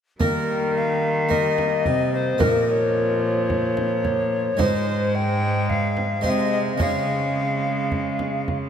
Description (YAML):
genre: classical, renaissance-style consort dance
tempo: 109 BPM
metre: 4/4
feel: straight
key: Eb mixolydian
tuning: A4 = 435 Hz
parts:
  - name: tenor recorder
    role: melody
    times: 0.2-8.4 s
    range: Bb4 to G5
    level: -24 LUFS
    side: left 2 dB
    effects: none
  - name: harpsichord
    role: accompaniment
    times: 0.2-8.7 s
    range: Ab2 to Db5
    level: -25 LUFS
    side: equal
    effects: none
  - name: rich viola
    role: accompaniment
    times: 0.2-8.7 s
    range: F3 to Ab3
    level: -29 LUFS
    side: left 2 dB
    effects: none
  - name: rich cello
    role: bass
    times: 0.2-8.7 s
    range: Ab2 to Eb3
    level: -27 LUFS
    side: right 2 dB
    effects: none
  - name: frame drum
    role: percussion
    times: 0.2-8.7 s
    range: none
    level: -29 LUFS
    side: right 2 dB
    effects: none
room: wet cathedral reverb, RT60 5.4 s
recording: in a vast, echoing space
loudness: -19 LUFS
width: side -8 dB against mid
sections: 0.2-8.7 A section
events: none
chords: 0.2 Eb; 2.4 Bbm; 4.6 Ab; 6.8 Db